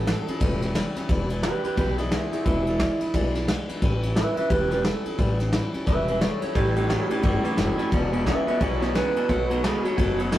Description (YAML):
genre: rockabilly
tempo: 176 BPM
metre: 4/4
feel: swing 61% on 8ths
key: unclear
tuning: A4 = 438 Hz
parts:
  - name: electric guitar through a small old amp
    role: melody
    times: 0.0-9.6 s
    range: E4 to E5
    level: -27 LUFS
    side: right 2 dB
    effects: none
  - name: picked steel-string acoustic guitar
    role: accompaniment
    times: 0.0-10.4 s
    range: E2 to F#4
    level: -30 LUFS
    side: left 2 dB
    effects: none
  - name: upright bass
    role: bass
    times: 0.0-10.4 s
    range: E1 to B1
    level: -28 LUFS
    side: equal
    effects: none
  - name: vintage brush drum kit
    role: drums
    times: 0.1-10.4 s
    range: kick drum, ride cymbal, snare drum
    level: -26 LUFS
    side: equal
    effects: none
  - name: electric guitar through a small old amp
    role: riff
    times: 6.6-10.4 s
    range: E2 to G#3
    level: -26 LUFS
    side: equal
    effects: spring reverb
room: moderate small room reverb, RT60 0.5 s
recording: rough rehearsal-room recording, tube saturation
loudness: -21 LUFS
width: side -13 dB against mid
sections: 0.0-10.4 A section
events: none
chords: 0.0 A7; 1.1 E7; 3.8 A7; 7.9 E7; 9.3 B7